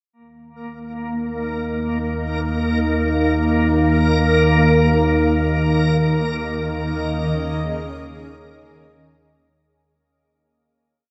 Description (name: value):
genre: dark ambient drone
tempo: free time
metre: none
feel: none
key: unclear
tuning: A4 = 440 Hz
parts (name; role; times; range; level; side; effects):
- backwards swelling texture; texture; 0.6-9.6 s; Bb3 to Bb4; -24 LUFS; equal; built-in reverb, shimmer reverb
- granular cloud pad; sustained chords; 1.5-9.6 s; Eb3 to F5; -27 LUFS; equal; built-in reverb, shimmer reverb
- analog drone; drone; 1.5-9.7 s; Eb2 to Eb3; -22 LUFS; equal; chorus
room: wet huge ambient reverb, RT60 7.6 s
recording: in a vast, echoing space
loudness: -19 LUFS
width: mono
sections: 0.2-9.6 A section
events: fade-in on synth drone 0.2-9.6; fade-in on ambient pad 0.2-9.6; fade-out 4.9-9.6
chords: 0.2 Eb5; 4.9 Db/Eb